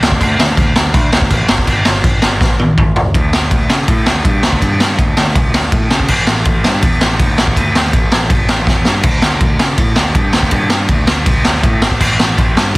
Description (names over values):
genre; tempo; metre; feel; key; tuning
punk rock; 162 BPM; 4/4; straight; unclear; A4 = 443 Hz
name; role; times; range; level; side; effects
growling picked electric bass; bass; 0.0-12.8 s; G1 to C#3; -17 LUFS; equal; overdrive
raw garage drum kit; drums; 0.0-12.8 s; crash cymbal, kick drum, ride cymbal, snare drum, toms; -11 LUFS; equal; none
room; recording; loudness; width
little or no reverb; dense, heavily limited modern master; -10 LUFS; side -23 dB against mid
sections
0.0-3.1 A section; 3.1-12.8 B section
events
drum fill 2.4-3.1, 8.7-9.0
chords
none